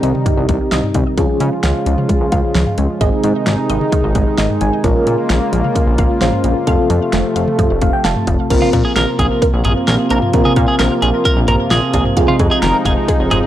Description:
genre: synth-pop.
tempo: 131 BPM.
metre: 4/4.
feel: straight.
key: Bb dorian.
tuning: A4 = 440 Hz.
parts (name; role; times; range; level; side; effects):
FM electric piano with tremolo; accompaniment; 0.0-13.5 s; C4 to A5; -20 LUFS; equal; phaser.
warm analog pad; sustained chords; 0.0-13.5 s; C3 to F4; -19 LUFS; equal; chorus.
resonant blip pluck; arpeggios; 0.0-13.4 s; Eb3 to F5; -24 LUFS; right 1 dB; phaser, tape echo.
chorused synth bass; bass; 0.0-13.4 s; F1 to Db3; -17 LUFS; equal; none.
pop drum kit; drums; 0.0-13.4 s; cowbell, crash cymbal, hi-hat, kick drum, snare drum, toms; -18 LUFS; equal; none.
twelve-string electric guitar; second line; 8.6-13.4 s; F4 to Bb4; -19 LUFS; right 1 dB; tremolo, tape echo.
room: light reverb, digital ambience.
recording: dry, gritty hardware recording, transformer saturation.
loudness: -12 LUFS.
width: side -12 dB against mid.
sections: 0.0-8.5 A section; 8.5-13.5 B section.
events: FM electric piano fill 4.2-4.8, 7.6-8.5.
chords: 0.0 Cm; 1.2 Db; 3.0 Ab; 4.8 Bbm7; 6.7 F; 8.5 Bbsus2; 12.2 Fm7.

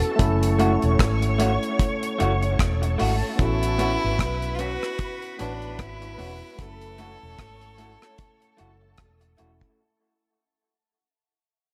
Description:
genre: lovers rock reggae.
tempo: 75 BPM.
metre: 4/4.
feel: swing 58% on 16ths.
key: unclear.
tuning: A4 = 441 Hz.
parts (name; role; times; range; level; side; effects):
soft string machine; second line; 0.0-9.8 s; A4 to C#6; -34 LUFS; equal; phaser, ensemble chorus, dub echo.
barky tine electric piano; accompaniment; 0.0-9.8 s; A3 to C#5; -32 LUFS; equal; overdrive, dub echo.
deep reggae drum kit; drums; 0.0-9.8 s; hi-hat, kick drum, rim click; -28 LUFS; equal; none.
vintage muted fingered electric bass; bass; 0.2-9.6 s; E1 to B1; -27 LUFS; equal; none.
electric guitar through a small old amp; stabs; 0.6-9.5 s; A3 to F#4; -31 LUFS; equal; dub echo.
bright fiddle; melody; 3.4-9.0 s; D4 to A4; -34 LUFS; equal; tape echo.
room: light reverb, small room ambience.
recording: none.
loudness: -23 LUFS.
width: mono.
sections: 0.0-9.8 A section.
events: fade-out 0.0-9.8.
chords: 0.2 F#m7; 3.4 A69; 6.6 F#m7.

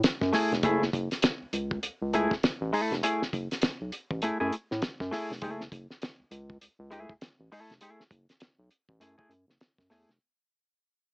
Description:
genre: funk.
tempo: 100 BPM.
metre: 4/4.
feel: swing 60% on 16ths.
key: F# minor.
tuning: A4 = 440 Hz.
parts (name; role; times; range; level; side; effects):
round analog bass; bass; 0.0-10.2 s; E#1 to A2; -32 LUFS; equal; none.
cloth-damped thuddy drum kit; drums; 0.0-10.2 s; hi-hat, kick drum, snare drum; -29 LUFS; equal; cassette tape.
semi-hollow electric guitar; accompaniment; 0.3-10.1 s; A3 to A4; -27 LUFS; equal; wide subtle chorus, cassette tape.
room: little or no reverb.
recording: home recording on cassette, small speaker sound.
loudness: -27 LUFS.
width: side -32 dB against mid.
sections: 0.0-10.2 A section.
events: fade-out 0.0-10.2.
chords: 0.0 F#m9.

